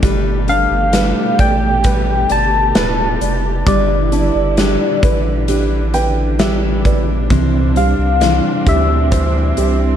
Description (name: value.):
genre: pop ballad.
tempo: 66 BPM.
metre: 4/4.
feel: straight.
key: unclear.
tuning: A4 = 440 Hz.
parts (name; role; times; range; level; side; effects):
dark baby grand piano; accompaniment; 0.0-10.0 s; C3 to G5; -21 LUFS; right 4 dB; none.
warm studio string section; sustained chords; 0.0-10.0 s; B2 to G4; -23 LUFS; right 4 dB; none.
picked steel-string acoustic guitar; arpeggios; 0.0-10.0 s; C3 to C5; -22 LUFS; left 7 dB; digital delay.
saturated sub bass; bass; 0.0-10.0 s; D1 to D2; -17 LUFS; equal; none.
huge arena drum kit; drums; 0.0-9.8 s; hi-hat, kick drum, snare drum; -19 LUFS; equal; none.
soft struck synth lead; melody; 0.5-10.0 s; D5 to A5; -18 LUFS; left 3 dB; chorus, phaser.
room: studio ambience.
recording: dark, warm production, faint mains hum.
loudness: -12 LUFS.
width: side -9 dB against mid.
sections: 0.0-10.0 A section.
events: grand piano fill 5.5-7.3.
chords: 0.0 Gadd9; 3.7 Em7/G; 7.3 Cadd9.